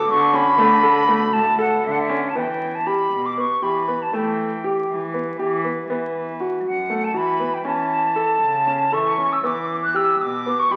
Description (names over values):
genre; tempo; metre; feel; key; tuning
contemporary instrumental, chamber music in an uneven meter; 237 BPM (eighths); 7/8; straight; E dorian; A4 = 440 Hz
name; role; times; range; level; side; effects
silver concert flute; melody; 0.0-10.8 s; E5 to F#6; -22 LUFS; equal; none
muted studio string section; sustained chords; 0.0-2.3 s; D3 to F#4; -38 LUFS; equal; none
clear baby grand piano; arpeggios; 0.0-10.8 s; A3 to A4; -26 LUFS; equal; none
dark cello; bass; 0.1-10.8 s; F#2 to E3; -29 LUFS; equal; none
room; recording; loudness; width
wet recital hall reverb, RT60 1.6 s; very old 78 rpm record, vinyl crackle; -20 LUFS; mono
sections
0.0-2.4 A section; 2.4-10.8 B section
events
none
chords
0.0 D6; 2.4 Em; 4.1 A5/E; 5.9 B5; 7.7 A; 9.4 Em